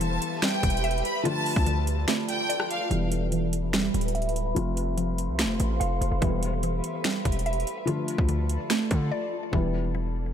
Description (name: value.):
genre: hip hop, trap.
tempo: 145 BPM.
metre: 4/4.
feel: half-time.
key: E phrygian.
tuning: A4 = 440 Hz.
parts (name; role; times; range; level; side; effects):
rich studio violin section; second line; 0.0-2.9 s; F5 to B5; -31 LUFS; left 1 dB; ping-pong delay.
felt-muted upright piano; accompaniment; 0.0-10.3 s; E3 to F4; -34 LUFS; left 4 dB; low-pass filter.
granular cloud pad; sustained chords; 0.0-9.5 s; F4 to C6; -33 LUFS; right 1 dB; built-in reverb, low-pass filter.
mallet-like synth pluck; arpeggios; 0.0-10.3 s; D3 to F5; -31 LUFS; right 2 dB; chorus, phaser, low-pass filter, ping-pong delay.
hard-hitting 808-style bass; bass; 0.0-10.3 s; D1 to D3; -28 LUFS; equal; none.
trap drum kit; drums; 0.0-9.6 s; finger snaps, hi-hat, kick drum, rim click, snare drum; -29 LUFS; equal; overdrive.
room: light reverb, digital ambience.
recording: none.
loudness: -24 LUFS.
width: side -9 dB against mid.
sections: 0.0-2.9 A section; 2.9-9.5 B section.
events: kick muted 2.1-2.9; filter sweep 2.9-9.5; break 9.1-9.5; hi-hats muted 9.5-10.3.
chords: 0.0 Em; 1.3 Dm; 2.9 Em; 4.6 F; 6.2 Em; 7.9 Dm; 9.5 Em.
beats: 0.01 0.43 0.84 | 1.25 1.67 2.08 2.50 | 2.91 3.32 3.74 4.15 | 4.56 4.98 5.39 5.80 | 6.22 6.63 7.05 7.46 | 7.87 8.29 8.70 9.12 | 9.53 9.94.